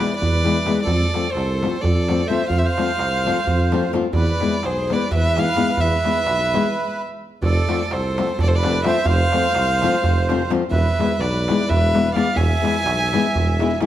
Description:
balkan folk, Balkan wedding band; 256 BPM (eighths); 7/8; straight; A4 = 440 Hz
rich violin; melody; 0.0-13.8 s; C5 to G#5; -22 LUFS; right 1 dB
accordion; second line; 0.0-13.8 s; G#4 to E5; -27 LUFS; right 2 dB; light tremolo tuning
nylon-string guitar; accompaniment; 0.0-13.9 s; E3 to F4; -23 LUFS; left 5 dB
darbuka; percussion; 0.0-13.9 s; -23 LUFS; right 2 dB
mellow tuba; bass; 0.2-13.7 s; E1 to F2; -24 LUFS; equal
moderate recital hall reverb, RT60 1.6 s; -17 LUFS; side -12 dB against mid
0.0-7.4 A section; 7.4-13.9 A section
stop 6.7-7.4
0.0 E; 0.9 F; 4.1 E; 7.4 F; 10.7 E
0.16 0.40 0.63 | 0.86 1.10 1.33 1.57 1.80 2.03 2.27 | 2.50 2.73 2.97 3.20 3.44 3.67 3.90 | 4.14 4.37 4.61 4.84 5.08 5.31 5.54 | 5.78 6.01 6.25 6.48 6.71 6.95 7.18 | 7.42 7.65 7.89 8.12 8.36 8.59 8.83 | 9.06 9.30 9.53 9.77 10.00 10.24 10.47 | 10.71 10.94 11.18 11.41 11.65 11.88 12.12 | 12.36 12.59 12.83 13.06 13.30 13.54 13.77

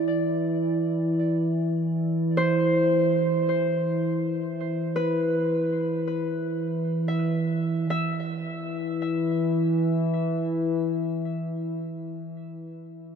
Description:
ambient; 54 BPM; 4/4; straight; A4 = 439 Hz
Celtic harp; arpeggios; 0.0-12.6 s; B4 to E5; -28 LUFS; equal; ping-pong delay
analog drone; drone; 0.0-12.6 s; E3 to E4; -25 LUFS; equal; chorus
wet huge ambient reverb, RT60 7.3 s; dark, warm production; -23 LUFS; side -7 dB against mid
0.0-7.9 A section; 7.9-12.3 B section
0.0 Cadd9/E; 7.9 E5
0.13 1.24 2.35 | 3.46 4.57 5.68 6.79 | 7.90 9.02 10.13 11.24

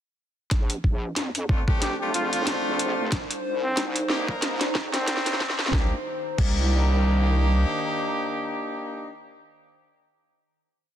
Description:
glitch hop; 92 BPM; 4/4; swing 57% on 16ths; C dorian; A4 = 440 Hz
wobble bass; bass; 0.5-7.6 s; F1 to F2; -26 LUFS; equal; chorus, tube saturation, high-pass filter
drum and bass drum kit; drums; 0.5-6.6 s; crash cymbal, hi-hat, rim click, snare drum; -28 LUFS; equal
electronic kick drum; drums; 0.5-6.6 s; -23 LUFS; equal; overdrive
warbly tape-like pad; texture; 1.1-9.0 s; Eb3 to Bb5; -32 LUFS; equal; chorus, built-in reverb, phaser, sidechain pumping
bright horn section; stabs; 1.5-9.1 s; A3 to Bb4; -28 LUFS; left 1 dB; vintage 12-bit sampler grit, sidechain pumping, ping-pong delay
warm trumpet; melody; 1.8-5.6 s; C4 to G4; -31 LUFS; equal; low-pass filter, ping-pong delay
digital ambience; dense, heavily limited modern master, high-pass filter; -22 LUFS; side -10 dB against mid
0.5-5.7 build; 5.7-8.3 final chord
build-up 0.5-5.7; drum fill 0.5-5.7; filter sweep 0.5-5.7
0.5 Bbmaj9; 3.1 Cm7
| 0.51 1.17 1.82 2.47 | 3.12 3.77 4.43 5.08 | 5.73 6.38 7.04 7.69

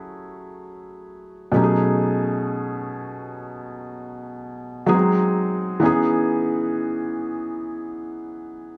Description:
R&B; free time; A4 = 440 Hz
felt-muted upright piano; solo; 0.0-8.8 s; B2 to G#4; -24 LUFS; equal
light reverb, small room ambience; studio ambience, faint mains hum; -22 LUFS; mono
0.0-8.8 A section
0.0 F#m7; 1.5 B13; 4.9 G#7; 5.8 C#m9
free time

